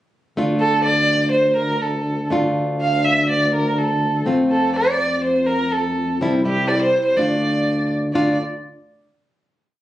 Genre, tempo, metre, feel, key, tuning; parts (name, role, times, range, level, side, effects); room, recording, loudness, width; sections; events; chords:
klezmer; 123 BPM; 2/4; straight; D minor; A4 = 440 Hz
nylon-string guitar; accompaniment; 0.4-8.4 s; G3 to F4; -22 LUFS; left 1 dB
mellow tuba; bass; 0.4-8.4 s; C2 to F2; -22 LUFS; equal
dark violin; melody; 0.6-8.4 s; G4 to F5; -19 LUFS; right 1 dB
light reverb; recorded on a phone in the room, club reverb, compression, nothing above 10.5 kHz; -16 LUFS; side -14 dB against mid
0.4-8.1 A section; 8.1-9.1 final chord
0.4 Dm; 4.3 F; 6.2 C; 7.2 Dm